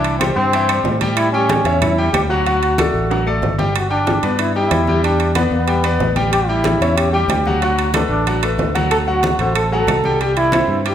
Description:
latin, salsa; 186 BPM; 4/4; straight; G major; A4 = 444 Hz
bright trombone; melody; 0.0-10.9 s; B3 to A4; -19 LUFS; equal
bright concert grand piano; accompaniment; 0.0-10.9 s; E3 to G5; -20 LUFS; left 2 dB
fingered electric bass; bass; 0.0-10.9 s; G1 to A2; -20 LUFS; equal
congas; percussion; 0.0-10.9 s; -25 LUFS; left 1 dB
timbales; percussion; 0.0-10.9 s; -25 LUFS; right 7 dB
claves; percussion; 0.2-3.4, 8.9-10.7 s; -33 LUFS; left 4 dB
moderate recital hall reverb, RT60 1.6 s; recorded in a church or concert hall; -14 LUFS; side -9 dB against mid
0.0-3.8 A section; 3.8-10.9 A section
drum fill 3.1-3.8
0.0 C; 1.2 A7; 2.5 D; 3.8 G; 5.0 Em7; 6.3 A7; 7.6 D6; 8.9 D7; 10.2 C

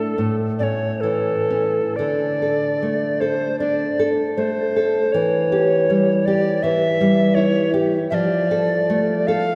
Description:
romantic duo for recorder and classical guitar; 58-83 BPM; 4/4; rubato; D minor; A4 = 440 Hz
tenor recorder; melody; 0.0-9.6 s; A4 to F5; -24 LUFS; equal
nylon-string guitar; accompaniment; 0.0-9.6 s; A2 to A4; -22 LUFS; equal
wet cathedral reverb, RT60 4.8 s; recorded in a church or concert hall; -19 LUFS; mono
0.0-9.6 A section
0.2 A; 2.0 D5; 5.1 C#dim/E; 8.1 Dm/F

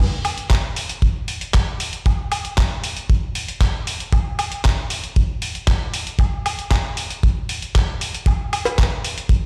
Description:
nu-disco; 116 BPM; 4/4; straight
dusty soul sampler-style drum kit; drums; 0.2-9.4 s; handclaps, hi-hat, woodblock; -27 LUFS; equal; overdrive
kick drum; drums; 0.5-9.4 s; -19 LUFS; equal
cowbell; percussion; 8.7-8.8 s; -29 LUFS; equal
light reverb, small room ambience; played on a big sound system in a bare room, large studio reverb; -21 LUFS; mono
0.0-9.5 A section

